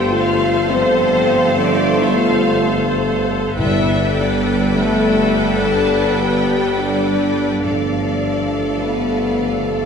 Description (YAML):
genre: cinematic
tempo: free time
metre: none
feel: none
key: G mixolydian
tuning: A4 = 436 Hz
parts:
  - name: clear studio violin section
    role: melody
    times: 0.0-9.9 s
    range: A4 to A5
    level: -27 LUFS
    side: left 3 dB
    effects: none
  - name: rich symphonic violin section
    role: second line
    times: 0.0-9.9 s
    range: C5 to G5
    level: -26 LUFS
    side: left 2 dB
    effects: none
  - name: clear symphonic viola section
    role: accompaniment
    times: 0.0-9.9 s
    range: A4 to C5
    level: -23 LUFS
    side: equal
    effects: none
  - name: bright trombone section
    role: sustained chords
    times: 0.0-9.9 s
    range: F3 to B3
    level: -24 LUFS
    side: equal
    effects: none
  - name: mellow French horn section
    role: sustained chords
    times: 0.0-9.9 s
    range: A3 to A4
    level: -19 LUFS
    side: left 2 dB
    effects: none
  - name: rich symphonic cello section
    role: bass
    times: 0.0-9.9 s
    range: D3 to D4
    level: -26 LUFS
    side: right 3 dB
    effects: none
  - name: rich symphonic double bass section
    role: bass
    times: 0.0-9.9 s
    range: G1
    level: -25 LUFS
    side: equal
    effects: none
  - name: warm tuba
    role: bass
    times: 0.0-9.9 s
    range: G1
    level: -22 LUFS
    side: right 1 dB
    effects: none
  - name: timpani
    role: percussion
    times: 3.6-4.4, 7.7-8.5 s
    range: G2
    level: -26 LUFS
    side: equal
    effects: none
room: wet recital hall reverb, RT60 1.3 s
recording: recorded in a church or concert hall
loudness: -14 LUFS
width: side -6 dB against mid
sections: 0.0-9.9 A section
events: none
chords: 0.0 F/G; 3.6 Gadd9; 7.7 Dm/G